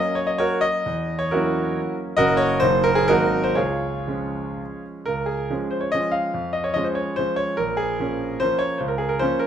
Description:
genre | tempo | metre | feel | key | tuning
classical, romantic triple-time dance for piano with dotted rhythms | 112-158 BPM | 3/4 | rubato | Db major | A4 = 438 Hz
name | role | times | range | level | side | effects
clear concert grand piano | solo | 0.0-9.5 s | Gb1 to F5 | -20 LUFS | equal | none
room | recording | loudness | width
moderate recital hall reverb, RT60 1.6 s | close, detailed microphones | -20 LUFS | side -9 dB against mid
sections
0.0-5.1 A section; 5.1-9.5 B section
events
none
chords
0.0 F#; 0.9 F#7/E; 2.2 Gb; 2.6 Ebm/Gb; 3.1 Ab9; 3.6 Db; 6.3 Db/F; 7.6 Bbm7; 8.8 Bbm/Db

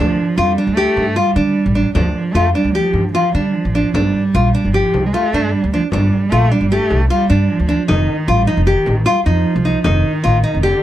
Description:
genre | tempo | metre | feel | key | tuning
contemporary instrumental, chamber music in an uneven meter | 152 BPM | 5/4 | straight | unclear | A4 = 441 Hz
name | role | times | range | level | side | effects
dark cello | second line | 0.0-10.8 s | D3 to A3 | -18 LUFS | right 2 dB | none
nylon-string guitar | arpeggios | 0.0-10.8 s | D4 to G4 | -17 LUFS | left 1 dB | none
upright bass | bass | 0.0-10.7 s | F1 to D3 | -17 LUFS | equal | none
frame drum | percussion | 1.0-10.7 s | none | -25 LUFS | left 2 dB | none
room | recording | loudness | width
little or no reverb | lossy compression artefacts | -13 LUFS | side -12 dB against mid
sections
0.0-10.8 A section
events
none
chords
0.0 Dm; 3.9 G7(no3); 7.9 F7

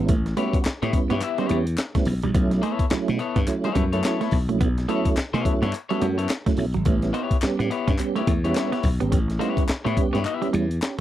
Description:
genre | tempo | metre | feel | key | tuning
funk | 106 BPM | 4/4 | swing 60% on 16ths | unclear | A4 = 440 Hz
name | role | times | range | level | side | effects
semi-hollow electric guitar | riff | 0.0-10.6 s | F#3 to C#4 | -28 LUFS | right 7 dB | none
mellow tonewheel organ | stabs | 0.0-11.0 s | F#3 to G4 | -25 LUFS | right 4 dB | chorus vibrato, slow rotary speaker
slap bass | bass | 0.0-10.8 s | G#1 to B2 | -25 LUFS | left 1 dB | none
breakbeat sampler-style drum kit | drums | 0.1-11.0 s | hi-hat, kick drum, snare drum | -24 LUFS | left 1 dB | none
electric guitar at the edge of break-up | accompaniment | 0.4-10.5 s | B3 to E5 | -27 LUFS | left 7 dB | none
group handclap | percussion | 0.6-11.0 s | none | -34 LUFS | left 5 dB | none
room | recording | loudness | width
little or no reverb | dry, close 1970s-style studio recording | -20 LUFS | side -12 dB against mid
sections
0.0-11.0 A section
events
none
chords
0.0 A9

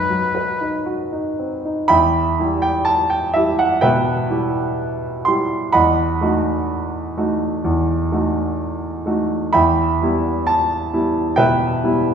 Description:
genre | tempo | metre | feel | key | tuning
classical, romantic duo for oboe and grand piano | 56-68 BPM | 4/4 | rubato | E minor | A4 = 438 Hz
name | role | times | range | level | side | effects
warm oboe | melody | 0.0-0.9 s | B4 | -21 LUFS | left 3 dB | none
warm baby grand piano | accompaniment | 0.0-12.1 s | E2 to C6 | -16 LUFS | right 1 dB | none
room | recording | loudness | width
wet recital hall reverb, RT60 1.4 s | recorded in a church or concert hall | -16 LUFS | side -7 dB against mid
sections
0.0-1.9 A section; 1.9-12.1 B section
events
none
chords
0.0 B; 1.9 Em; 5.7 B7/E; 9.5 Em

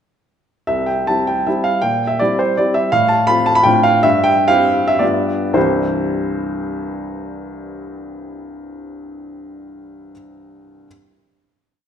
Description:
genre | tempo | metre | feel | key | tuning
classical, romantic triple-time dance for piano with dotted rhythms | 104-185 BPM | 3/4 | rubato | C major | A4 = 440 Hz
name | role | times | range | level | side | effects
warm baby grand piano | solo | 0.7-10.9 s | C2 to B5 | -15 LUFS | equal | none
room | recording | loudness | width
wet recital hall reverb, RT60 1.6 s | none | -14 LUFS | side -8 dB against mid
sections
0.7-5.5 A section; 5.5-8.7 final chord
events
slowing down 2.4-5.5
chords
0.7 C; 1.8 C7/Bb; 2.9 F/A; 3.7 Dm7/A; 4.0 C/G; 5.0 G7; 5.5 C

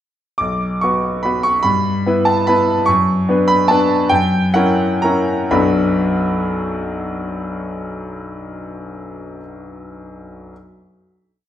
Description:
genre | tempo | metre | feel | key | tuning
classical, piano waltz | 116-154 BPM | 3/4 | rubato | B minor | A4 = 440 Hz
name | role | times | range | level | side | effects
bright grand piano | solo | 0.4-10.5 s | B1 to D6 | -15 LUFS | equal | none
room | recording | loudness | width
wet recital hall reverb, RT60 1.4 s | none | -14 LUFS | side -10 dB against mid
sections
0.4-5.5 A section; 5.5-8.4 final chord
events
slowing down 2.3-5.5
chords
0.4 Bm; 1.7 Em/G; 2.9 Bm/F#; 4.1 F#7b9; 5.5 Bm

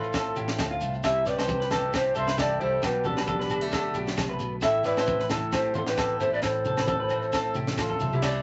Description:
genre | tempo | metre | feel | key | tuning
highlife guitar band | 134 BPM | 4/4 | swing 53% on 16ths | unclear | A4 = 441 Hz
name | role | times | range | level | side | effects
mellow polished pan flute | melody | 0.0-8.4 s | G4 to E5 | -31 LUFS | equal | none
warm trumpet | second line | 0.0-8.4 s | D4 to C5 | -38 LUFS | equal | none
picked steel-string acoustic guitar | accompaniment | 0.0-8.4 s | E2 to F4 | -38 LUFS | equal | none
electric guitar through a small old amp | arpeggios | 0.0-8.4 s | F4 to E5 | -33 LUFS | equal | none
vintage muted fingered electric bass | bass | 0.0-8.4 s | A1 to D2 | -38 LUFS | equal | none
shekere | percussion | 0.0-8.3 s | none | -43 LUFS | equal | none
tight funk drum kit | drums | 0.1-8.3 s | crash cymbal, kick drum, snare drum | -34 LUFS | equal | none
agogo bells | percussion | 0.1-8.4 s | none | -40 LUFS | equal | none
congas | percussion | 0.4-8.3 s | none | -37 LUFS | equal | none
room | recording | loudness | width
moderate club reverb, RT60 0.5 s | vinyl crackle, nothing above 7.9 kHz | -27 LUFS | mono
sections
0.0-8.2 A section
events
drum fill 7.7-8.2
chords
0.0 F/A; 1.0 C; 2.8 Gadd9/B; 4.6 Am; 6.4 F/A

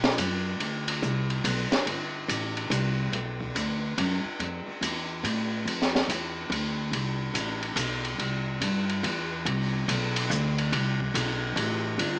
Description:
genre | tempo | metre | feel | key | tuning
modal jazz | 142 BPM | 3/4 | swing 65% on 8ths | unclear | A4 = 440 Hz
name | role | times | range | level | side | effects
upright bass | bass | 0.0-12.2 s | G1 to A2 | -29 LUFS | equal | none
open jazz drum kit | drums | 0.0-12.1 s | hi-hat, kick drum, ride cymbal, snare drum | -28 LUFS | equal | cassette tape
room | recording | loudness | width
moderate booth ambience, RT60 0.3 s | home recording on cassette, small speaker sound | -26 LUFS | side -28 dB against mid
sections
0.0-9.5 A section; 9.5-12.2 B section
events
none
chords
none

